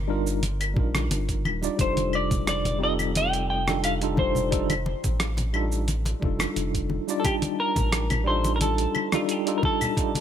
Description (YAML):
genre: sunset chillout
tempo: 88 BPM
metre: 4/4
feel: straight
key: unclear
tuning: A4 = 440 Hz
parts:
  - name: semi-hollow electric guitar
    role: melody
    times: 0.0-10.2 s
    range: F4 to G5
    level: -28 LUFS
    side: equal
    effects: lush chorus, digital delay
  - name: round analog bass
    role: bass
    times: 0.0-8.9 s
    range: Eb1 to Bb1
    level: -28 LUFS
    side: equal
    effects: none
  - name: tine electric piano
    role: accompaniment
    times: 0.1-10.2 s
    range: G3 to A5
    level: -28 LUFS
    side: equal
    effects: medium stereo tremolo, auto-pan
  - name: dusty soul sampler-style drum kit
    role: drums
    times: 0.3-10.2 s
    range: cabasa, claves, hi-hat, rim click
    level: -29 LUFS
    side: equal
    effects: overdrive
  - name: congas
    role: percussion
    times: 0.4-10.2 s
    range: none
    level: -31 LUFS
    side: left 2 dB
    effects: none
  - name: electronic kick drum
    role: drums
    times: 0.8-10.1 s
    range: none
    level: -27 LUFS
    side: equal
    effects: overdrive
room: light reverb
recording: none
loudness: -22 LUFS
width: side -9 dB against mid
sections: 0.0-10.2 A section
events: none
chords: 0.0 Ebmaj9; 1.8 F13